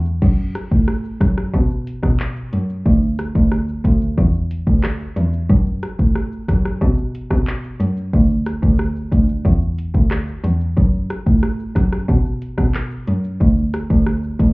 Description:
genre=dancehall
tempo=91 BPM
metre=4/4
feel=straight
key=F# minor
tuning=A4 = 445 Hz
part: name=muted cello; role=bass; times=0.0-14.5 s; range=D2 to B2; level=-18 LUFS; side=equal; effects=none
part: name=afro-pop drum kit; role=drums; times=0.1-14.5 s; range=crash cymbal, handclaps, hi-hat, kick drum, rim click, shaker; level=-18 LUFS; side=equal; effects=vintage 12-bit sampler grit
room=little or no reverb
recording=heard muffled through a wall, club reverb, EQ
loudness=-16 LUFS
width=side -24 dB against mid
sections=0.2-14.5 A section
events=none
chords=none

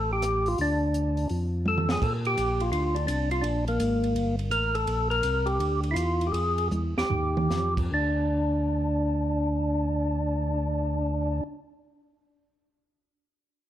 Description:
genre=soul jazz organ trio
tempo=143-168 BPM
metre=4/4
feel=swing 65% on 8ths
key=unclear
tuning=A4 = 439 Hz
part: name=percussive tonewheel organ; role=melody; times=0.0-11.4 s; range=Bb3 to Bb4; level=-27 LUFS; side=equal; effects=slow rotary speaker, overdrive, plate reverb
part: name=tonewheel organ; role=bass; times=0.0-11.4 s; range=G1 to Bb2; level=-28 LUFS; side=equal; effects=overdrive, slow rotary speaker
part: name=compact cocktail drum kit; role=drums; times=0.2-7.8 s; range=crash cymbal, hi-hat, kick drum, ride cymbal, rim click, snare drum, toms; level=-34 LUFS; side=right 2 dB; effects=none
room=moderate large studio reverb, RT60 0.9 s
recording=none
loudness=-24 LUFS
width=side -12 dB against mid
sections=0.0-2.0 A section; 2.0-7.9 B section; 7.9-11.3 C section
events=drum fill 1.7-2.0, 6.7-7.5; slowing down 4.9-7.9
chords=0.0 D5; 1.3 Fm; 2.0 Gm9/Bb; 2.7 Csus24; 3.4 Bb7; 4.2 Gmadd9; 4.9 Gmadd11/Bb; 5.6 Dm; 6.3 E; 7.1 Ebadd9; 7.9 N.C.

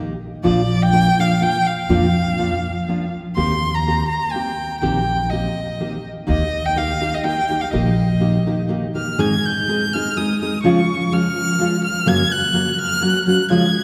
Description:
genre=mexican folk, mariachi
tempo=124 BPM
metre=3/4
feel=straight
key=Eb major, Ab major from 9.2 s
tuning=A4 = 440 Hz
part: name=nylon-string guitar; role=accompaniment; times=0.0-13.7 s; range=Gb2 to Ab4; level=-22 LUFS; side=equal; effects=none
part: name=warm violin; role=melody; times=0.4-13.8 s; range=D5 to Ab6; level=-24 LUFS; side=equal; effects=none
part: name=upright bass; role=bass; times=0.5-8.4 s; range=Bb1 to F2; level=-24 LUFS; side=equal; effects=none
room=wet church reverb, RT60 3.3 s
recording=recorded in a church or concert hall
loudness=-19 LUFS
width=mono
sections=0.0-9.2 A section; 9.2-13.8 B section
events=none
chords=0.5 Bb; 3.4 Eb6; 6.3 Eb; 9.2 Ab; 10.6 Db; 12.1 Gb

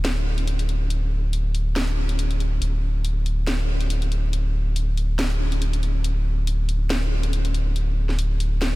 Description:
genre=deep dubstep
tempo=140 BPM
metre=4/4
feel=swing 55% on 16ths, half-time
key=unclear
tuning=A4 = 439 Hz
part: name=soft dub sub bass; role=bass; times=0.0-8.8 s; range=D1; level=-22 LUFS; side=equal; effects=tube saturation
part: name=garage drum kit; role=drums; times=0.0-8.7 s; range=hi-hat, snare drum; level=-29 LUFS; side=equal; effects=none
room=little or no reverb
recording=none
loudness=-21 LUFS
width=side -19 dB against mid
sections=0.0-8.8 A section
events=none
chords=none

